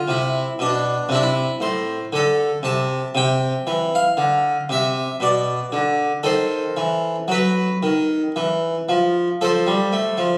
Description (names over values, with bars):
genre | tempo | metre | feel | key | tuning
classical, baroque-style suite movement for harpsichord | 58 BPM | 3/4 | rubato | unclear | A4 = 440 Hz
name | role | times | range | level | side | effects
harpsichord | solo | 0.0-10.4 s | A2 to A5 | -20 LUFS | equal | none
room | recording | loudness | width
wet recital hall reverb, RT60 1.5 s | recorded on a phone in the room, club reverb | -20 LUFS | mono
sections
0.0-10.4 A section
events
none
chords
0.1 Am; 3.1 C; 5.2 Bm; 6.3 D#dim7; 8.4 N.C.; 9.4 F